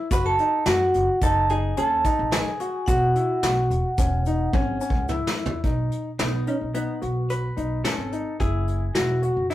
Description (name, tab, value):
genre	progressive instrumental, band music in an uneven meter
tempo	108 BPM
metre	5/4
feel	straight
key	unclear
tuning	A4 = 440 Hz
part	warm grand piano	arpeggios	0.0-9.5 s	B3 to F#4	-29 LUFS	left 3 dB	none
part	vintage hollow-body jazz guitar	melody	0.1-9.5 s	B3 to B4	-27 LUFS	left 1 dB	none
part	vibraphone with medium hard mallets	second line	0.1-5.0 s	F#5 to B5	-25 LUFS	right 2 dB	none
part	upright bass	bass	0.1-9.5 s	E1 to F#2	-26 LUFS	equal	none
part	soft brush drum kit	drums	0.1-9.5 s	hi-hat, kick drum, snare drum, toms	-26 LUFS	equal	none
part	tube shaker	percussion	0.1-5.2 s	none	-43 LUFS	left 5 dB	none
room	wet studio reverb, RT60 0.5 s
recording	rough rehearsal-room recording, warm saturation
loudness	-21 LUFS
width	side -14 dB against mid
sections	0.0-5.6 A section; 5.6-9.5 B section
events	drum fill 4.5-5.6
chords	0.1 F#m69; 2.9 Esus2; 5.6 B; 8.4 F#7(no3)